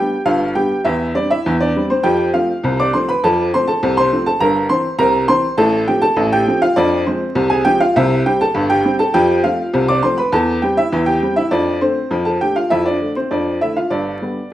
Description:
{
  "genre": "ragtime piano",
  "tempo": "101 BPM",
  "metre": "2/4",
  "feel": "straight",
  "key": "C major",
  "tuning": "A4 = 440 Hz",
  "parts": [
    { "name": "warm upright piano", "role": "solo", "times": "0.0-14.5 s", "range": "G1 to D6", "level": "-14 LUFS", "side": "equal", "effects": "none" }
  ],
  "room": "moderate large studio reverb, RT60 1.1 s",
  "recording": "band playing live in one room, vinyl crackle",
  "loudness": "-14 LUFS",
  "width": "side -13 dB against mid",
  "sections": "0.0-14.5 A section",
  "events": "none",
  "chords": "0.0 G7; 0.9 C/E; 2.0 F; 4.4 C7/G; 5.6 F/A; 6.8 Fm; 8.0 C; 9.2 F; 10.3 C/E; 11.5 Dm/F; 13.9 G",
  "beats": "0.27 | 0.86 1.46 | 2.05 2.64 | 3.23 3.82 | 4.41 5.00 | 5.60 6.19 | 6.78 7.37 | 7.96 8.56 | 9.15 9.74 | 10.34 10.93 | 11.53 12.12 | 12.71 13.31 | 13.91 14.52"
}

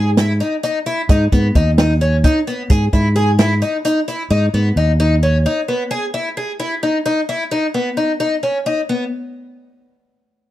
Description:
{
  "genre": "progressive instrumental, band music in an uneven meter",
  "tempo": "262 BPM (eighths)",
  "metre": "7/8",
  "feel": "straight",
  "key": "unclear",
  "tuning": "A4 = 440 Hz",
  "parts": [
    { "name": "picked twelve-string acoustic guitar", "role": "arpeggios", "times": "0.0-9.0 s", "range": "B3 to G#4", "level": "-18 LUFS", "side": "left 1 dB", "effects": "none" },
    { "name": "fingered electric bass", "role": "bass", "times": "0.0-5.4 s", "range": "D#2 to G#2", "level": "-15 LUFS", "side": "equal", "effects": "none" },
    { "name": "open jazz drum kit", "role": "drums", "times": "0.2-4.2 s", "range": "hi-hat, kick drum, snare drum", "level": "-15 LUFS", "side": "right 1 dB", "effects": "none" }
  ],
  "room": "studio reverb",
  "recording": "dry, close 1970s-style studio recording",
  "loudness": "-14 LUFS",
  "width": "side -14 dB against mid",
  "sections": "0.0-9.1 A section",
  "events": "none",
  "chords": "0.0 Emaj7/G#; 1.1 G#m; 2.7 Emaj7/G#; 4.3 G#m; 5.9 Emaj7; 7.5 B",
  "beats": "0.17 0.41 0.64 0.86 | 1.09 1.32 1.55 1.78 2.01 2.24 2.47 | 2.70 2.93 3.16 3.39 3.62 3.85 4.08 | 4.30 4.53 4.76 4.99 5.22 5.45 5.68 | 5.91 6.14 6.37 6.59 6.82 7.05 7.28 | 7.51 7.74 7.97 8.20 8.43 8.65 8.88"
}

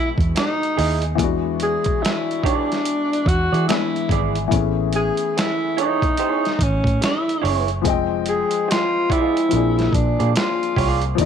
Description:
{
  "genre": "R&B, neo-soul",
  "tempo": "72 BPM",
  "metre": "4/4",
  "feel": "swing 61% on 16ths",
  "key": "unclear",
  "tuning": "A4 = 439 Hz",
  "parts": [
    { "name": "breathy tenor saxophone", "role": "melody", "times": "0.0-11.0 s", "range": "C#4 to G#4", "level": "-21 LUFS", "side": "equal", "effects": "slapback echo" },
    { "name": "warm upright piano", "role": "accompaniment", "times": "0.0-11.3 s", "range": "B2 to G5", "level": "-25 LUFS", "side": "left 12 dB", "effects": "none" },
    { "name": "vintage muted fingered electric bass", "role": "bass", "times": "0.2-11.3 s", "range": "F1 to E3", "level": "-22 LUFS", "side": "right 1 dB", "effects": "none" },
    { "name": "boom bap sampler-style drum kit", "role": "drums", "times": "0.2-11.3 s", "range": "hi-hat, kick drum, snare drum", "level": "-23 LUFS", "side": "right 1 dB", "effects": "none" },
    { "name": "electric guitar through a small old amp", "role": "second line", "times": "0.4-11.0 s", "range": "E4 to D#5", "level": "-26 LUFS", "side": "right 13 dB", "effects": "none" }
  ],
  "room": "light reverb, digital ambience",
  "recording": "1960s-style stereo with parts hard left and right",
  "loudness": "-17 LUFS",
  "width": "side -8 dB against mid",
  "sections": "0.0-11.3 A section",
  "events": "none",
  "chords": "0.0 Emaj7; 1.2 E7; 4.5 Amaj7; 7.9 Fm7; 9.5 A#7",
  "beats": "0.35 | 1.19 2.02 2.85 3.69 | 4.52 5.35 6.18 7.02 | 7.85 8.69 9.52 10.35 | 11.19"
}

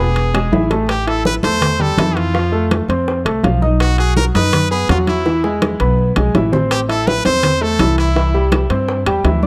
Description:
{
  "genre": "latin, salsa",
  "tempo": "165 BPM",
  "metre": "4/4",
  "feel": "straight",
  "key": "A minor",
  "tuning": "A4 = 440 Hz",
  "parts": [
    { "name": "brilliant trumpet", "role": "melody", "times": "0.0-8.5 s", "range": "E4 to C5", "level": "-23 LUFS", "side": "equal", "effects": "tape echo" },
    { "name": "clear concert grand piano", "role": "accompaniment", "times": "0.0-9.5 s", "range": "E3 to F#6", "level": "-21 LUFS", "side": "equal", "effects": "none" },
    { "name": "upright bass", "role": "bass", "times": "0.0-9.5 s", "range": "E1 to G2", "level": "-20 LUFS", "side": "equal", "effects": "none" },
    { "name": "congas", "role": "percussion", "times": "0.2-9.5 s", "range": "none", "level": "-23 LUFS", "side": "equal", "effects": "none" },
    { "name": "timbales", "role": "percussion", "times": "0.2-9.4 s", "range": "none", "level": "-25 LUFS", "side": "equal", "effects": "none" },
    { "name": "bongos", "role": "percussion", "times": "0.3-9.5 s", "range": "none", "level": "-26 LUFS", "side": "equal", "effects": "none" },
    { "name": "claves", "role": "percussion", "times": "0.3-0.5, 6.7-9.2 s", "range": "none", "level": "-34 LUFS", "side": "equal", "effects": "none" }
  ],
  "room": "little or no reverb",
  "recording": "dry, close 1970s-style studio recording",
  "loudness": "-16 LUFS",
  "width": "mono",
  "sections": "0.9-9.5 A section",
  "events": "drum fill 0.0-0.9, 5.3-6.7",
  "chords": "0.2 E; 0.9 Am7; 2.3 F; 3.8 B; 5.3 E; 6.7 Am; 8.2 Cadd9",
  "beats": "0.16 0.53 | 0.89 1.25 1.62 1.98 | 2.35 2.71 3.08 3.44 | 3.80 4.17 4.53 4.89 | 5.26 5.62 5.99 6.35 | 6.71 7.07 7.44 7.80 | 8.16 8.52 8.89 9.25"
}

